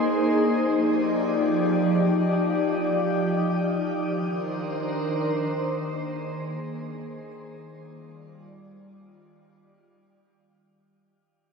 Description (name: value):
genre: hip hop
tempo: free time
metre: none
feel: none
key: unclear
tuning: A4 = 440 Hz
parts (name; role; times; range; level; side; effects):
- glassy FM pad; solo; 0.0-10.9 s; Eb3 to D5; -23 LUFS; equal; ensemble chorus, built-in reverb
room: wet shimmer reverb, RT60 6.2 s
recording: none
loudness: -22 LUFS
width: side -5 dB against mid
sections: 0.0-10.9 A section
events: fade-out 0.0-10.9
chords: 0.0 Bb9sus4; 0.6 Ebmaj9; 4.0 Cm9; 5.7 Bb9sus4; 7.5 Ebmaj9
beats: free time